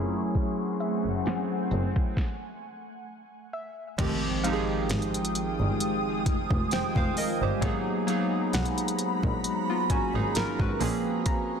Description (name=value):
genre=contemporary R&B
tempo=66 BPM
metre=4/4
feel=swing 54% on 16ths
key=unclear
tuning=A4 = 439 Hz
part: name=warm analog keys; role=accompaniment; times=0.0-11.6 s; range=Eb3 to G5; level=-29 LUFS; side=right 1 dB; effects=chorus
part: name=ethereal airy pad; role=sustained chords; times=0.0-11.6 s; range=Ab3 to Eb6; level=-33 LUFS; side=equal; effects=ensemble chorus, built-in reverb, phaser
part: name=swell and impact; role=sound effects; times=0.6-7.6 s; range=none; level=-39 LUFS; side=equal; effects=none
part: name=soft round pluck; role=texture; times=0.0-11.6 s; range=Fb5 to Bb5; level=-39 LUFS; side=left 2 dB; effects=chorus, tape echo
part: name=smooth R&B drum kit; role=drums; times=0.3-11.5 s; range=crash cymbal, hi-hat, kick drum, snare drum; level=-29 LUFS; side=equal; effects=none
part: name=rich double bass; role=bass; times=1.1-10.9 s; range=F1 to Cb2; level=-31 LUFS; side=equal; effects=none
room=light reverb, digital ambience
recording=dense, heavily limited modern master, low-pass filter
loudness=-25 LUFS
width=side -7 dB against mid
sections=0.0-4.0 A section; 4.0-11.6 B section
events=filter sweep 0.0-4.0; swell 0.6-4.0; stop 2.2-4.0; impact 4.0-7.6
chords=0.0 Gbm9; 4.0 Fm9; 7.6 Abm9; 10.8 Bbm9